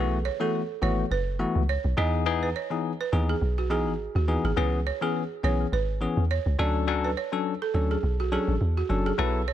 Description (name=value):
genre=afrobeats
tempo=104 BPM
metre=4/4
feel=swing 55% on 16ths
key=unclear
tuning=A4 = 440 Hz
part: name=bell-like tine electric piano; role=accompaniment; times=0.0-9.4 s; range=E3 to A4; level=-28 LUFS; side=left 5 dB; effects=auto-pan
part: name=balafon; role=riff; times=0.0-9.5 s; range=F#4 to D#5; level=-31 LUFS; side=right 8 dB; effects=tape echo
part: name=deep log drum bass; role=bass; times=0.0-9.5 s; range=F#1 to E2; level=-26 LUFS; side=equal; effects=none
room=little or no reverb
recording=none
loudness=-24 LUFS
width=side -11 dB against mid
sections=0.0-9.5 A section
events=none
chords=0.0 B7sus4; 2.0 Emaj7; 4.6 C#m7; 6.6 Dmaj7